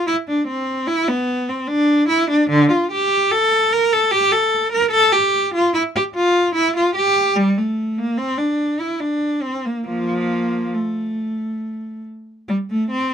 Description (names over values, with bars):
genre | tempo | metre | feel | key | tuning
classical, baroque-style suite movement for unaccompanied cello | 67-76 BPM | 3/4 | rubato | unclear | A4 = 442 Hz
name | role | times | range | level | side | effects
rich cello | solo | 0.0-13.1 s | D3 to Bb4 | -16 LUFS | equal | none
room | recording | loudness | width
little or no reverb | close, detailed microphones | -16 LUFS | side -8 dB against mid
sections
0.0-12.5 A section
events
none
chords
none